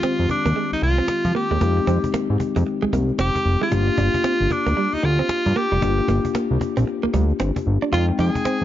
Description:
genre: R&B, new jack swing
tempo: 114 BPM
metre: 4/4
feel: swing 61% on 16ths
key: F dorian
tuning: A4 = 439 Hz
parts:
  - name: edgy tenor saxophone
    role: melody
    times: 0.0-8.6 s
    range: D4 to Ab4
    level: -23 LUFS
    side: right 1 dB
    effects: none
  - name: mellow tine electric piano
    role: accompaniment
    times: 0.0-8.6 s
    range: Eb3 to G5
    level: -25 LUFS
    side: left 6 dB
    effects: none
  - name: direct-recorded clean electric guitar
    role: riff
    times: 0.0-8.5 s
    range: G3 to F4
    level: -27 LUFS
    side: right 5 dB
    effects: lush chorus
  - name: cajon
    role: drums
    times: 0.0-8.6 s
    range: none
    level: -28 LUFS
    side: equal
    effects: none
  - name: fat analog bass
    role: bass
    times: 0.2-8.6 s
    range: F1 to F3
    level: -20 LUFS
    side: equal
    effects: none
room: light reverb, studio ambience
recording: dark, warm production, nothing above 7.5 kHz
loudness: -18 LUFS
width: side -12 dB against mid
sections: 0.0-8.6 A section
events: none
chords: 0.0 Fm9; 3.7 Gm7; 7.9 Fm9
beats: 0.03 0.56 1.08 | 1.61 2.14 2.66 3.19 | 3.72 4.24 4.77 5.30 | 5.82 6.35 6.88 7.40 | 7.93 8.45

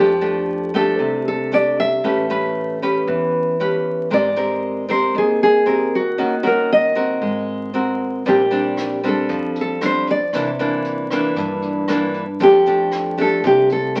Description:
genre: bossa nova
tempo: 116 BPM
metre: 4/4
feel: straight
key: F major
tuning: A4 = 440 Hz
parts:
  - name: nylon-string guitar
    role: melody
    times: 0.0-14.0 s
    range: Gb4 to E5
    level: -20 LUFS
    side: equal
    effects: none
  - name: nylon-string guitar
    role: accompaniment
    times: 0.0-14.0 s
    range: G2 to B4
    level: -22 LUFS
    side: equal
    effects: none
  - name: upright bass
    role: bass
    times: 0.0-14.0 s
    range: Ab1 to G2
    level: -34 LUFS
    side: equal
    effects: none
  - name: jazz brush drum kit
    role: drums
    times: 8.3-14.0 s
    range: hi-hat, kick drum, rim click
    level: -36 LUFS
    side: equal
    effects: none
room: wet studio reverb, RT60 0.7 s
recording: very old 78 rpm record, vinyl crackle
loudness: -18 LUFS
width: mono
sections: 0.0-14.0 A section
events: none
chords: 0.0 F69; 2.0 A9; 4.1 Abmaj9; 6.2 Ebm7; 7.2 Ab9; 8.3 Bb69; 10.3 C9; 12.4 F69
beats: 0.48 0.99 1.51 | 2.03 2.55 3.07 3.59 | 4.11 4.63 5.15 5.66 | 6.18 6.70 7.22 7.74 | 8.26 8.78 9.29 9.81 | 10.33 10.85 11.37 11.89 | 12.40 12.92 13.44 13.96

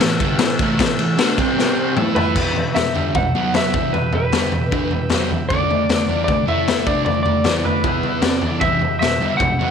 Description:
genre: garage rock duo or trio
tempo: 153 BPM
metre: 4/4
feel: straight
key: E minor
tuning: A4 = 440 Hz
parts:
  - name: combo organ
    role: sustained chords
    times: 0.0-9.7 s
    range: D4 to G5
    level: -29 LUFS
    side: right 3 dB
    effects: none
  - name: fuzz guitar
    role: riff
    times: 0.0-9.7 s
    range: E2 to A4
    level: -21 LUFS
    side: right 2 dB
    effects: distortion
  - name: raw garage drum kit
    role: drums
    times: 0.0-9.7 s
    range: crash cymbal, kick drum, ride cymbal, snare drum, toms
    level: -19 LUFS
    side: left 3 dB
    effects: none
  - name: electric slide guitar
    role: melody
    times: 2.2-9.7 s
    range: B4 to F#5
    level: -21 LUFS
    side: equal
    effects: none
room: light reverb, small room ambience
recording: 1960s-style stereo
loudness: -16 LUFS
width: side -7 dB against mid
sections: 0.0-2.4 A section; 2.4-9.7 B section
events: drum fill 1.6-2.4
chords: 0.0 A5; 1.4 C5; 2.0 A5; 2.4 Em; 3.3 B5; 3.7 Em; 5.5 D5; 6.5 A5; 6.9 D5; 7.8 E5; 8.2 D5; 8.6 Em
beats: 0.01 0.41 | 0.80 1.19 1.58 1.97 | 2.37 2.76 3.15 3.54 | 3.94 4.33 4.72 5.11 | 5.50 5.89 6.29 6.68 | 7.07 7.46 7.85 8.24 | 8.63 9.02 9.41

